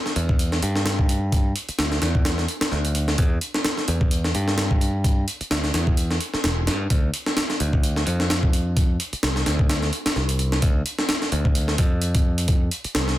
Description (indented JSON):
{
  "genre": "breakbeat, breaks",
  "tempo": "129 BPM",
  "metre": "4/4",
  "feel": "swing 56% on 16ths",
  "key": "E phrygian",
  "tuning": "A4 = 441 Hz",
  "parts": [
    { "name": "breakbeat sampler-style drum kit", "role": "drums", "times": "0.1-13.2 s", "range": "hi-hat, kick drum, snare drum", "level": "-21 LUFS", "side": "equal", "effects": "none" },
    { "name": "modern bright picked electric bass", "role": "bass", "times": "0.2-13.1 s", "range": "E1 to G2", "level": "-23 LUFS", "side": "equal", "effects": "none" }
  ],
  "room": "little or no reverb",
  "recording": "dense, heavily limited modern master",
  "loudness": "-20 LUFS",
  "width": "side -14 dB against mid",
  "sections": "0.0-13.2 A section",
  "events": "none",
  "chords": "none",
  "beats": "0.39 0.86 | 1.32 1.79 2.25 2.72 | 3.18 3.65 4.11 4.58 | 5.04 5.51 5.97 6.44 | 6.90 7.37 7.83 8.30 | 8.77 9.23 9.70 10.16 | 10.62 11.09 11.55 12.02 | 12.49 12.95"
}